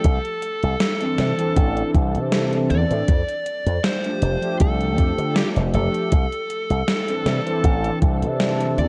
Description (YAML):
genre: vaporwave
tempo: 79 BPM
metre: 4/4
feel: swing 54% on 16ths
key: C major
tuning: A4 = 440 Hz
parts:
  - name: dark smooth lead guitar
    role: melody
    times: 0.0-8.9 s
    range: G4 to D5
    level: -29 LUFS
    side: equal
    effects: overdrive, vintage 12-bit sampler grit, tape echo
  - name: mellow synth brass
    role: accompaniment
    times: 0.0-8.9 s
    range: E3 to A4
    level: -28 LUFS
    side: equal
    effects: lush chorus
  - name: slap bass with an envelope filter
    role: bass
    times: 0.0-8.9 s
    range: F1 to D3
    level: -24 LUFS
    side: equal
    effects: none
  - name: electronic kick drum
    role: drums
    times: 0.0-8.2 s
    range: none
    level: -21 LUFS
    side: equal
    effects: vintage 12-bit sampler grit
  - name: gated 80s digital drum machine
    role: drums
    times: 0.0-8.9 s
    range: hi-hat, snare drum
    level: -27 LUFS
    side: equal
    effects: gated reverb, gated reverb snare, vintage 12-bit sampler grit
room: light reverb, digital ambience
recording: dark, warm production, cassette tape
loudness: -21 LUFS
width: mono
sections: 0.0-8.9 A section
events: none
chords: 0.0 C69; 3.1 F69; 6.1 C69